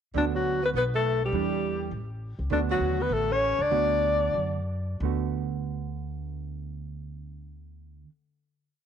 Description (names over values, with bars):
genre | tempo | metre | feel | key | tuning
jazz, small-group swing and bop | 173-204 BPM | 4/4 | swing 62% on 8ths | D major | A4 = 440 Hz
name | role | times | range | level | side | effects
breathy tenor saxophone | second line | 0.1-4.5 s | D3 to D4 | -33 LUFS | right 11 dB | none
upright bass | bass | 0.1-8.0 s | A1 to F#2 | -32 LUFS | equal | none
mellow alto saxophone | melody | 0.2-4.6 s | D4 to D5 | -26 LUFS | left 4 dB | none
hollow-body jazz guitar | accompaniment | 0.2-8.1 s | D3 to F#4 | -32 LUFS | right 12 dB | none
room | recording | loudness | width
moderate spring reverb, RT60 2.1 s | 1960s-style stereo | -25 LUFS | side -8 dB against mid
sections
0.1-5.0 A section; 5.0-7.8 final chord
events
slowing down 2.5-5.0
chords
0.1 D6; 0.7 Gadd9/B; 1.3 Em7; 1.9 A; 2.5 D6